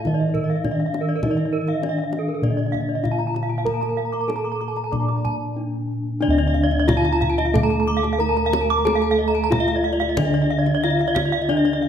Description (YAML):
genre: Balinese gamelan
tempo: 91-102 BPM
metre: 4/4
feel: straight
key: D pelog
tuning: A4 = 441 Hz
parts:
  - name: gamelan-type bronze metallophone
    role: melody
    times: 0.0-11.9 s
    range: D4 to D5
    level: -24 LUFS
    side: equal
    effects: none
  - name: gamelan-type bronze metallophone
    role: accompaniment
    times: 0.0-11.9 s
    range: D3 to D4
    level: -29 LUFS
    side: right 3 dB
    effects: none
  - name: gamelan-type bronze metallophone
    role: arpeggios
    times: 0.0-11.8 s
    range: A4-30c to D6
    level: -26 LUFS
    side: right 4 dB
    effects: none
  - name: gamelan-type bossed gongs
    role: bass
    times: 0.0-11.9 s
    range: D2 to Bb4-20c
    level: -24 LUFS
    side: equal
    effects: none
  - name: gamelan-type bronze metallophone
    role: arpeggios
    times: 0.1-11.9 s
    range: Bb4-20c to D6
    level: -27 LUFS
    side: left 5 dB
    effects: none
  - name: kendang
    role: percussion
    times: 0.1-11.3 s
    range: none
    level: -27 LUFS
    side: left 1 dB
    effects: none
room: wet recital hall reverb, RT60 1.6 s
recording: none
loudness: -19 LUFS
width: side -8 dB against mid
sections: 0.0-6.2 A section; 6.2-11.9 B section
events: break 5.2-6.2; drum fill 5.4-6.2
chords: none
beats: 0.06 0.65 | 1.24 1.83 2.43 3.04 | 3.66 4.28 4.92 5.56 | 6.22 6.88 7.54 8.20 | 8.86 9.52 10.17 10.83 | 11.49